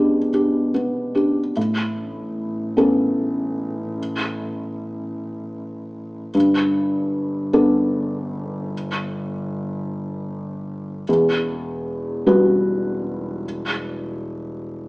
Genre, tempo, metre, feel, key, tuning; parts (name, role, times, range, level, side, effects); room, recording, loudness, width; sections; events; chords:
neoclassical piano and strings; 51 BPM (dotted quarters); 6/8; rubato; A4 = 439 Hz
felt-muted upright piano; accompaniment; 0.0-14.9 s; E2 to B4; -19 LUFS; equal
muted double bass; bass; 1.6-14.9 s; E1 to A1; -29 LUFS; equal
wet large studio reverb, RT60 1.1 s; band playing live in one room, small speaker sound; -20 LUFS; side -22 dB against mid
0.0-1.6 A section; 1.6-14.9 B section
0.0 Em7; 1.6 Aadd9; 6.3 Gadd9; 11.1 Emadd9